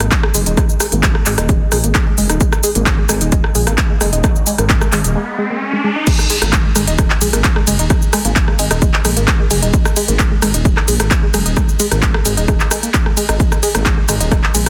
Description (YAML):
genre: driving peak-time techno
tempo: 131 BPM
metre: 4/4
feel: straight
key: unclear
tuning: A4 = 440 Hz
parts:
  - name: tight sequenced synth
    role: riff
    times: 0.0-14.7 s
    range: G#3 to D#4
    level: -23 LUFS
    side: equal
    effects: chorus, phaser, tube saturation, sidechain pumping, tape echo
  - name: dark detuned saw bass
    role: bass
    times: 0.0-14.7 s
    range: D#1 to A#1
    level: -20 LUFS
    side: equal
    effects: sidechain pumping
  - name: techno drum kit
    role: drums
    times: 0.0-14.7 s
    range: crash cymbal, handclaps, hi-hat, ride cymbal, rim click, shaker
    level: -20 LUFS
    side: equal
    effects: sidechain pumping on hats, sidechain pumping on perc, sidechain pumping on cymbals
  - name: electronic kick drum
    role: drums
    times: 0.1-14.4 s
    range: none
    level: -18 LUFS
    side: equal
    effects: overdrive
  - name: riser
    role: sound effects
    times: 4.3-6.1 s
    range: none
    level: -26 LUFS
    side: equal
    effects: none
room: light reverb, digital ambience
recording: dense, heavily limited modern master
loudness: -14 LUFS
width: mono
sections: 0.0-6.1 A section; 6.1-14.7 B section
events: riser 4.3-6.1; drop 6.1-14.7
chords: 0.0 G#5